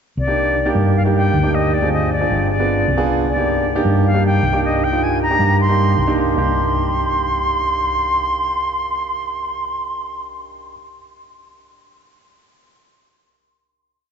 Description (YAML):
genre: Afro-Cuban jazz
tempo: 155 BPM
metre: 4/4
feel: straight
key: C minor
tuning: A4 = 440 Hz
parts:
  - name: bright reedy silver concert flute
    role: melody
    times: 0.2-10.2 s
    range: D5 to C6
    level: -20 LUFS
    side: equal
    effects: none
  - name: hollow-body short-scale fingered electric bass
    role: bass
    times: 0.2-10.7 s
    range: G1 to G2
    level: -19 LUFS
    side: left 1 dB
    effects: none
  - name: warm baby grand piano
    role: accompaniment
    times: 0.3-10.7 s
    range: Bb3 to Ab4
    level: -21 LUFS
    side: right 3 dB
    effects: none
room: wet cathedral reverb, RT60 4.4 s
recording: recorded in a church or concert hall, nothing above 7.9 kHz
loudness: -15 LUFS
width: side -7 dB against mid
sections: 0.2-6.4 A section; 6.4-9.5 final chord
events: none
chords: 0.2 Cm9; 1.7 Dm7b5; 2.5 G7b9; 3.3 Cm9